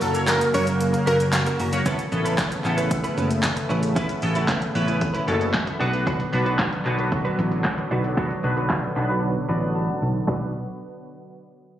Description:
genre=dance-pop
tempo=114 BPM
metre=4/4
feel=straight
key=B minor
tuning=A4 = 444 Hz
part: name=plucky unison lead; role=melody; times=0.0-1.2 s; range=A4 to C#5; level=-24 LUFS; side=equal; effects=digital delay
part: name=lush unison pad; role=sustained chords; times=0.0-10.5 s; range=C#3 to B3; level=-28 LUFS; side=equal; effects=chorus, sidechain pumping
part: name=direct-recorded clean electric guitar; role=riff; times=0.0-10.4 s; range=C#4 to B4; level=-30 LUFS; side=right 3 dB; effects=ensemble chorus
part: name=fingered electric bass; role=bass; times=0.0-10.5 s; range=F#1 to F#2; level=-25 LUFS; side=equal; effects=sidechain pumping
part: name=punchy analog drum machine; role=drums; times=0.0-10.4 s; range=crash cymbal, handclaps, hi-hat, kick drum, shaker, snare drum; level=-26 LUFS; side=equal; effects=none
part: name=group handclap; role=percussion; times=0.0-1.5, 6.3-10.5 s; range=none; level=-37 LUFS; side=equal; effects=none
part: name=chorused retro synth keys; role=accompaniment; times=0.1-10.5 s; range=F#3 to A5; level=-28 LUFS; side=left 1 dB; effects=sidechain pumping
room=light reverb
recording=recorded on a phone in the room, studio reverb, low-pass filter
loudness=-20 LUFS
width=side -11 dB against mid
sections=0.0-1.9 A section; 1.9-10.3 B section; 10.3-11.8 C section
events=break 0.0-1.9; drop 0.0-1.9; filter sweep 1.9-10.3; synth keys fill 5.3-6.1, 9.2-10.3; silent gap 9.2-10.3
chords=0.0 F#; 1.9 Aadd9; 5.8 Bm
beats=0.28 0.81 1.33 | 1.86 2.38 2.91 3.44 | 3.96 4.49 5.02 5.54 | 6.07 6.60 7.12 7.65 | 8.17 8.70 9.23 9.75 | 10.28

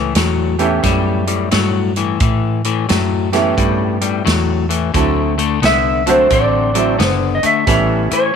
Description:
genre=electric blues shuffle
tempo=88 BPM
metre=4/4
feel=swing 64% on 8ths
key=unclear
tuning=A4 = 440 Hz
part: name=clean lap steel guitar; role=melody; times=0.0-0.1, 5.7-8.4 s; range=B4 to E5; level=-15 LUFS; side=right 1 dB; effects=none
part: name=electric guitar at the edge of break-up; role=riff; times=0.0-8.3 s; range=A2 to C4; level=-18 LUFS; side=left 12 dB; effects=none
part: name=vintage muted fingered electric bass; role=bass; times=0.0-8.1 s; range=F#1 to A2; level=-19 LUFS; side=right 1 dB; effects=none
part: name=natural country drum kit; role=drums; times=0.1-8.2 s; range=hi-hat, kick drum, snare drum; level=-20 LUFS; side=right 2 dB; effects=none
part: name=warm upright piano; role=accompaniment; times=0.6-8.1 s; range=F#3 to G4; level=-20 LUFS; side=right 11 dB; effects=none
room=light reverb, small room ambience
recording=1960s-style stereo with parts hard left and right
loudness=-13 LUFS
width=side -7 dB against mid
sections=0.0-8.4 A section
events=none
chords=0.0 A9; 4.9 D9; 7.7 A9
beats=0.16 0.84 1.52 | 2.21 2.89 3.57 4.26 | 4.94 5.62 6.31 6.99 | 7.67 8.36

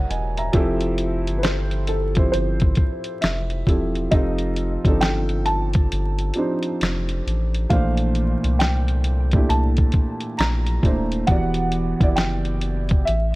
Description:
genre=lo-fi hip hop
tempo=67 BPM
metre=4/4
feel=swing 63% on 16ths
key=unclear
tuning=A4 = 440 Hz
part: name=dark upright piano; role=accompaniment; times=0.0-13.1 s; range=Bb2 to A#5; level=-24 LUFS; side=right 1 dB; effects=cassette tape, low-pass filter
part: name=soft dub sub bass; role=bass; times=0.0-13.4 s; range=Eb1 to C2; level=-23 LUFS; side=equal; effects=none
part: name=lo-fi sampler-style drum kit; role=drums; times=0.1-13.3 s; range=hi-hat, kick drum, snare drum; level=-20 LUFS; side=equal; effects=none
part: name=dark upright piano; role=melody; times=1.4-13.4 s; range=A4 to Bb5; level=-28 LUFS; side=right 1 dB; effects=low-pass filter
room=studio reverb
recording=vinyl crackle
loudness=-18 LUFS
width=side -20 dB against mid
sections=0.0-13.4 A section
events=none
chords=0.0 F#7#11; 0.5 Fmaj7; 4.1 F13; 7.7 Bbmaj9#11; 11.3 Em9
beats=| 0.54 1.43 2.33 3.22 | 4.12 5.01 5.91 6.80 | 7.70 8.60 9.49 10.39 | 11.28 12.18 13.07

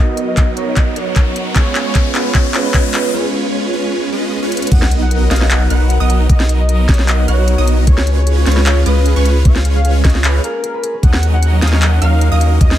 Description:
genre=future bass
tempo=152 BPM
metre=4/4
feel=half-time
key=unclear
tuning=A4 = 441 Hz
part: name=warm velvety synth lead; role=melody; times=0.0-12.8 s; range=Bb4 to F#5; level=-23 LUFS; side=equal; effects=chorus, sidechain pumping, ping-pong delay
part: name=tine electric piano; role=accompaniment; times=0.0-4.7 s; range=B3 to D#5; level=-23 LUFS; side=right 4 dB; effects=sidechain pumping, ping-pong delay
part: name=concert harp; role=arpeggios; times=0.0-0.8, 4.7-12.8 s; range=Db4 to F#5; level=-28 LUFS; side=right 2 dB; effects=sidechain pumping, ping-pong delay
part: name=supersaw chords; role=riff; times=0.0-12.8 s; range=F#3 to F#5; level=-20 LUFS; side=right 1 dB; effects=phaser, sidechain pumping, low-pass filter
part: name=riser and sub drop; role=sound effects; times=0.1-6.3 s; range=none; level=-25 LUFS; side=left 1 dB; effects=none
part: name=trap drum kit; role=drums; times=0.2-12.8 s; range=crash cymbal, handclaps, hi-hat, snare drum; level=-20 LUFS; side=equal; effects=none
part: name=electronic kick drum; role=drums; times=0.4-12.7 s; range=none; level=-12 LUFS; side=equal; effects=none
part: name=wide unison pluck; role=arpeggios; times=4.7-12.8 s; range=Db6 to F#6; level=-29 LUFS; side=right 3 dB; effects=auto-pan, sidechain pumping
part: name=saturated sub bass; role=bass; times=4.7-12.8 s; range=B1 to Eb2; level=-12 LUFS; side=equal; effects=sidechain pumping
room=light reverb, digital ambience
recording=none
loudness=-11 LUFS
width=side -12 dB against mid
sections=0.0-4.7 A section; 4.7-12.8 B section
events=build-up 0.0-4.7; drum fill 0.0-3.1, 4.5; filter sweep on supersaw synth 0.0-4.7; riser 0.1-3.1; break 3.1-4.7; drop 4.7-12.8; impact 4.7-6.3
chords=0.0 Bmaj7; 1.6 Db7; 4.7 Bmaj7; 7.9 Db7; 11.0 Ebm7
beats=0.37 0.77 1.16 | 1.56 1.95 2.35 2.74 | 3.14 3.53 3.93 4.32 | 4.71 5.11 5.50 5.90 | 6.29 6.69 7.08 7.48 | 7.87 8.27 8.66 9.06 | 9.45 9.85 10.24 10.64 | 11.03 11.43 11.82 12.21 | 12.61

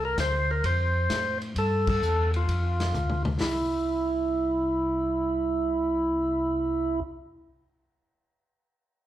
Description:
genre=soul jazz organ trio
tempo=130 BPM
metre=4/4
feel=swing 68% on 8ths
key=C mixolydian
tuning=A4 = 440 Hz
part: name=percussive tonewheel organ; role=melody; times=0.0-7.0 s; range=E4 to C5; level=-26 LUFS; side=right 1 dB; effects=overdrive, slow rotary speaker
part: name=mellow tonewheel organ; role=bass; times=0.0-7.0 s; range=C2 to A2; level=-29 LUFS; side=equal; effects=overdrive, chorus vibrato, slow rotary speaker
part: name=vintage drum kit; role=drums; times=0.2-3.5 s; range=crash cymbal, hi-hat, kick drum, ride cymbal, snare drum, toms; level=-33 LUFS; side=left 2 dB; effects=none
room=moderate large studio reverb, RT60 1.2 s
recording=band playing live in one room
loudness=-24 LUFS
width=side -12 dB against mid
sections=0.0-3.4 A section; 3.4-7.1 B section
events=band accent 1.8; drum fill 2.9-3.4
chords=0.0 Csus2; 0.6 F; 1.6 Gsus2; 3.4 C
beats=0.18 0.64 1.10 | 1.56 2.02 2.48 2.94 | 3.40 3.86 4.32 4.78 | 5.24 5.70 6.15 6.61

